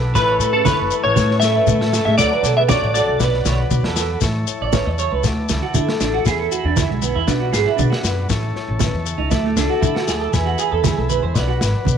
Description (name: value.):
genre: highlife guitar band.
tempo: 118 BPM.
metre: 4/4.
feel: straight.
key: A major.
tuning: A4 = 440 Hz.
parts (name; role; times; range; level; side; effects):
fingerpicked steel-string acoustic guitar; accompaniment; 0.0-12.0 s; A2 to C#5; -28 LUFS; left 13 dB; none.
overdriven combo organ; sustained chords; 0.0-12.0 s; D5 to D6; -31 LUFS; left 1 dB; none.
semi-hollow electric guitar; arpeggios; 0.0-11.6 s; G#3 to D5; -23 LUFS; right 11 dB; lush chorus, tape echo.
upright bass; bass; 0.0-12.0 s; F#1 to D3; -21 LUFS; equal; none.
congas; percussion; 0.1-12.0 s; none; -25 LUFS; right 10 dB; none.
clean electric guitar; melody; 0.2-3.9 s; A4 to E5; -18 LUFS; equal; ensemble chorus, tape echo.
breathy alto saxophone; second line; 0.2-3.9 s; C#3 to A3; -26 LUFS; left 11 dB; none.
crunchy breakbeat drum kit; drums; 0.2-12.0 s; kick drum, snare drum; -24 LUFS; equal; none.
shekere; percussion; 0.2-12.0 s; none; -24 LUFS; left 8 dB; none.
room: small room ambience.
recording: 1960s-style stereo with parts hard left and right.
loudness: -16 LUFS.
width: side -8 dB against mid.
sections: 0.0-4.2 A section; 4.2-12.0 B section.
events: clean electric guitar solo 4.2-12.0.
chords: 0.2 A; 2.2 D; 3.2 Bm; 4.2 A; 5.2 Dsus2; 6.3 E; 7.3 Bm; 8.3 A; 9.3 Dsus2; 10.3 E; 11.4 Bm.